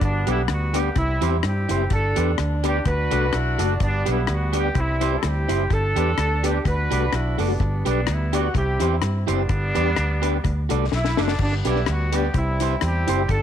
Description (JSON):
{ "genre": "ska", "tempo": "126 BPM", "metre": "4/4", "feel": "swing 55% on 8ths", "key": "G major", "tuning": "A4 = 440 Hz", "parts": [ { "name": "mellow horn section", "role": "melody", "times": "0.0-13.4 s", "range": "G3 to B4", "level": "-25 LUFS", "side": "right 1 dB", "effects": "none" }, { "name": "vintage muted fingered electric bass", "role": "bass", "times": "0.0-13.4 s", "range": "F#1 to G2", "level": "-23 LUFS", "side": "equal", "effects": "none" }, { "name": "deep reggae drum kit", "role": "drums", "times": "0.0-13.4 s", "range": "crash cymbal, hi-hat, kick drum, rim click, snare drum", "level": "-28 LUFS", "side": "left 3 dB", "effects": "tape echo" }, { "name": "electric guitar at the edge of break-up", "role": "accompaniment", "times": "0.3-13.2 s", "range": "E4 to D5", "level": "-28 LUFS", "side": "right 13 dB", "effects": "tape echo" }, { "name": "mellow tonewheel organ", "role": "stabs", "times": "0.3-13.2 s", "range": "A3 to G4", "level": "-30 LUFS", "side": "left 13 dB", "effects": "overdrive, chorus vibrato, fast rotary speaker" } ], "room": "light reverb, studio reverb", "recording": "1960s-style stereo with parts hard left and right", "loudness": "-19 LUFS", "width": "side -9 dB against mid", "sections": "0.0-11.4 A section; 11.4-13.4 A section", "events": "drum fill 10.9-11.4", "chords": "0.0 G; 1.0 C; 1.9 G; 2.9 D; 3.8 G; 4.8 C; 5.7 G; 6.7 D; 7.6 G; 8.5 C; 9.5 G; 10.4 D; 11.4 G; 12.3 C" }